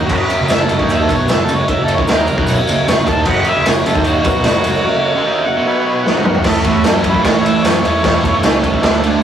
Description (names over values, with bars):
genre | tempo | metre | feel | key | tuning
garage rock duo or trio | 151 BPM | 4/4 | straight | unclear | A4 = 440 Hz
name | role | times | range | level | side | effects
mellow harmonica | melody | 0.0-8.8 s | F#4 to C#6 | -20 LUFS | equal | overdrive
combo organ | sustained chords | 0.0-9.2 s | A3 to B4 | -24 LUFS | right 1 dB | none
fuzz guitar | riff | 0.0-9.2 s | F#2 to D#4 | -18 LUFS | right 1 dB | distortion
fuzz fingered electric bass | bass | 0.0-9.2 s | F#1 to A2 | -22 LUFS | equal | overdrive, tube saturation
raw garage drum kit | drums | 0.1-9.1 s | crash cymbal, kick drum, ride cymbal, snare drum, toms | -14 LUFS | equal | none
tambourine | percussion | 0.5-8.5 s | none | -35 LUFS | right 3 dB | none
room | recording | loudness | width
light reverb | rough rehearsal-room recording, warm saturation, small room ambience | -12 LUFS | side -9 dB against mid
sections
0.0-6.4 A section; 6.4-9.2 B section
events
harmonica solo 0.0-6.4; drum fill 6.1-6.4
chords
0.0 F#; 5.7 B5; 6.1 F#; 6.4 A; 8.8 D5